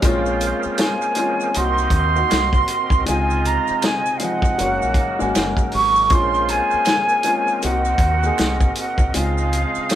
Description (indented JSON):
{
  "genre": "R&B, neo-soul",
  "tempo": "79 BPM",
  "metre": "4/4",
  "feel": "swing 61% on 16ths",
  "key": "Bb minor",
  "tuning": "A4 = 441 Hz",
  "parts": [
    { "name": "warm upright piano", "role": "accompaniment", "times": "0.0-10.0 s", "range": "F3 to Ab4", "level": "-24 LUFS", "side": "left 2 dB", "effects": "none" },
    { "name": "bright tonewheel organ", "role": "sustained chords", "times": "0.0-10.0 s", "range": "C3 to F5", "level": "-29 LUFS", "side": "right 1 dB", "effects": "overdrive, chorus vibrato, fast rotary speaker" },
    { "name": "muted trombone section", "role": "stabs", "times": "0.0-10.0 s", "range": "C3 to Ab4", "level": "-29 LUFS", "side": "right 5 dB", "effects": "none" },
    { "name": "deep dub fingered electric bass", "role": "bass", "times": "0.0-9.8 s", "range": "Gb1 to Eb2", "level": "-23 LUFS", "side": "equal", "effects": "none" },
    { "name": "warm soul drum kit", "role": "drums", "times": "0.0-10.0 s", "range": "hi-hat, kick drum, snare drum", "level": "-20 LUFS", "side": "equal", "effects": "none" },
    { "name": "maracas and finger snaps", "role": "percussion", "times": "0.0-10.0 s", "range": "none", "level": "-36 LUFS", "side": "right 5 dB", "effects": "none" },
    { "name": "concert flute", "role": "melody", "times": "0.8-10.0 s", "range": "F5 to Db6", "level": "-20 LUFS", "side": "right 2 dB", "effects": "none" }
  ],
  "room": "moderate studio reverb, RT60 0.6 s",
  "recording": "band playing live in one room",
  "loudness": "-16 LUFS",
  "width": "side -11 dB against mid",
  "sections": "0.0-10.0 A section",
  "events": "none",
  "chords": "0.0 Bbm9; 1.6 Cm7b5; 3.1 Dbmaj9; 4.6 Gb; 6.1 Bbm9; 7.6 Cm7b5; 9.1 Dbmaj9",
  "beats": "| 0.03 0.79 1.55 2.31 | 3.07 3.83 4.59 5.35 | 6.11 6.87 7.62 8.38 | 9.14 9.90"
}